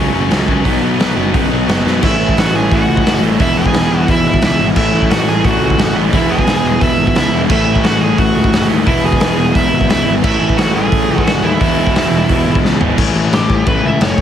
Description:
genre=punk rock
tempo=175 BPM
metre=4/4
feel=straight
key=unclear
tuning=A4 = 440 Hz
part: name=distorted electric guitar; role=riff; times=0.0-14.2 s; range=F#2 to E4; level=-17 LUFS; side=left 10 dB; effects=distortion
part: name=overdriven electric guitar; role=riff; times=0.0-13.0 s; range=E2 to B3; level=-18 LUFS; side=right 12 dB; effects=none
part: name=fuzz picked electric bass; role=bass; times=0.0-14.2 s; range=E1 to F#2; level=-19 LUFS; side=equal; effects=overdrive
part: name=raw garage drum kit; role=drums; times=0.3-14.2 s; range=crash cymbal, hi-hat, kick drum, snare drum, toms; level=-16 LUFS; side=equal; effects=none
part: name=smooth overdriven lead guitar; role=melody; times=2.0-14.2 s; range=E4 to G#5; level=-18 LUFS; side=right 2 dB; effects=none
room=little or no reverb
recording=heavily compressed radio sound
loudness=-11 LUFS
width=side -9 dB against mid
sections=0.0-2.0 A section; 2.0-13.0 B section; 13.0-14.2 C section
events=drum fill 1.9, 12.6-13.0; lead electric guitar solo 13.0-14.2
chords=0.0 F#m; 0.6 B; 2.0 A; 3.4 E; 4.8 A; 6.1 E; 7.5 A; 8.9 E; 10.2 A; 11.6 E; 13.0 A

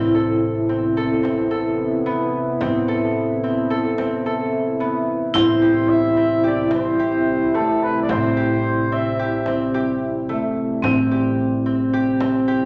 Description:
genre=contemporary instrumental, chamber music in an uneven meter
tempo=110 BPM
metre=5/4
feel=straight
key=unclear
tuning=A4 = 441 Hz
part: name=vibraphone with hard mallets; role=second line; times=0.0-12.7 s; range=C4 to E4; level=-23 LUFS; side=equal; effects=none
part: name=deep dark ambient pad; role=sustained chords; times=0.0-12.7 s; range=C3 to E4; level=-28 LUFS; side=equal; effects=chorus, built-in reverb
part: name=concert harp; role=arpeggios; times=0.0-12.7 s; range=A3 to A4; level=-26 LUFS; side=equal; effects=none
part: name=upright bass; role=bass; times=0.0-12.7 s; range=A1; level=-32 LUFS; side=equal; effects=none
part: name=frame drum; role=percussion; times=1.2-12.5 s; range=none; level=-34 LUFS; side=equal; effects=none
part: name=warm flugelhorn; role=melody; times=5.4-10.0 s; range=A4 to E5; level=-27 LUFS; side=equal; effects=none
room=wet recital hall reverb, RT60 1.4 s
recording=none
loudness=-20 LUFS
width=mono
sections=0.0-12.7 A section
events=none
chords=0.0 Am; 5.3 C/A

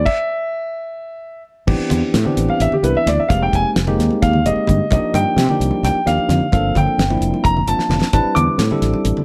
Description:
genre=electric jazz fusion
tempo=260 BPM (eighths)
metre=7/8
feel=straight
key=A phrygian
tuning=A4 = 439 Hz
part: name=dark baby grand piano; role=melody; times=0.0-9.0 s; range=G4 to D6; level=-22 LUFS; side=equal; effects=none
part: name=fretless electric bass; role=bass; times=0.0-9.2 s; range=F1 to C3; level=-21 LUFS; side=equal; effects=none
part: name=damped 70s drum kit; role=drums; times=0.1-9.2 s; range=crash cymbal, hi-hat, kick drum, snare drum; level=-22 LUFS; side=equal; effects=none
part: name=barky tine electric piano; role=accompaniment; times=1.7-9.2 s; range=E3 to B4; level=-23 LUFS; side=equal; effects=none
part: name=congas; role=percussion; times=1.7-9.2 s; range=none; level=-27 LUFS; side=equal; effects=none
room=light reverb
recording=none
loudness=-17 LUFS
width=mono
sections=0.0-1.7 A section; 1.7-9.2 B section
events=stop 0.1-1.7; grand piano solo 1.7-9.2; drum fill 7.8-8.1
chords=0.1 N.C.; 1.7 Am11; 3.3 Fm11; 4.9 Cm11; 6.5 Gm11; 8.1 Am11

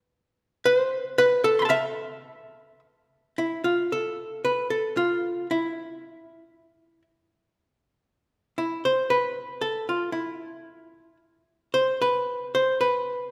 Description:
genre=japanese traditional, Japanese chamber music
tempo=57 BPM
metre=2/4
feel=rubato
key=E miyako bushi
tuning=A4 = 440 Hz
part: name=archtop guitar, miked and amplified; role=solo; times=0.7-13.3 s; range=E4 to C6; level=-25 LUFS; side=equal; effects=none
room=moderate concert hall reverb, RT60 1.8 s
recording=recorded in a church or concert hall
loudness=-25 LUFS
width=mono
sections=0.0-3.4 A section; 3.4-13.3 B section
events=none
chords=none

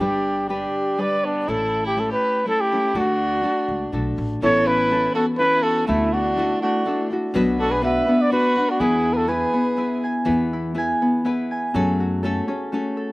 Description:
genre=mexican folk, mariachi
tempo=123 BPM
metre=3/4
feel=straight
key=D major, A major from 4.4 s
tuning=A4 = 441 Hz
part: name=dark trumpet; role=melody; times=0.0-10.0 s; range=D4 to E5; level=-20 LUFS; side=equal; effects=none
part: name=rich violin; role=second line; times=0.0-10.0 s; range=A3 to B4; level=-30 LUFS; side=right 2 dB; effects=slapback echo
part: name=nylon-string guitar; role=accompaniment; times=0.0-13.1 s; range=A2 to B4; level=-25 LUFS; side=left 1 dB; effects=slapback echo
part: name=upright bass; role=bass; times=0.0-12.4 s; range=G1 to F#2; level=-30 LUFS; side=equal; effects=none
part: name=Celtic harp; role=arpeggios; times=4.4-13.1 s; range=A3 to G#5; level=-23 LUFS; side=left 1 dB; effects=slapback echo
room=little or no reverb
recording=recorded outdoors, with no room sound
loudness=-18 LUFS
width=side -21 dB against mid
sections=0.0-4.4 A section; 4.4-13.1 B section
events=none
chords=0.0 G; 1.5 A; 2.9 D; 4.4 Aadd9; 5.9 Dadd9; 7.3 Bm; 8.8 E; 11.8 F#madd9

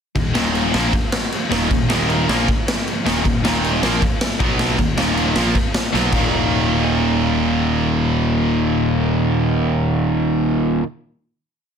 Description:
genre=punk rock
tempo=157 BPM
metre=4/4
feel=straight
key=Eb minor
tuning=A4 = 440 Hz
part: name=distorted electric guitar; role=riff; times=0.2-10.8 s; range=Eb2 to B3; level=-22 LUFS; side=left 9 dB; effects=overdrive
part: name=distorted electric guitar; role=riff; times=0.2-10.9 s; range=Eb2 to B3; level=-22 LUFS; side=right 12 dB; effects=overdrive
part: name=distorted electric guitar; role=riff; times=0.2-10.8 s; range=Eb2 to B3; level=-24 LUFS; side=right 1 dB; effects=distortion
part: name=fuzz picked electric bass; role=bass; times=0.2-10.8 s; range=Eb1 to B1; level=-23 LUFS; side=equal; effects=overdrive
part: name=raw garage drum kit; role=drums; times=0.2-6.2 s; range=crash cymbal, kick drum, snare drum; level=-20 LUFS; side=equal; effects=none
room=light reverb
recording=dense, heavily limited modern master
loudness=-16 LUFS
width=side -7 dB against mid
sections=0.2-6.3 riff; 6.3-9.4 final hit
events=drum fill 5.9-6.3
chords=0.2 Eb5; 4.4 B5; 4.8 Eb5; 5.9 B5; 6.1 Eb5

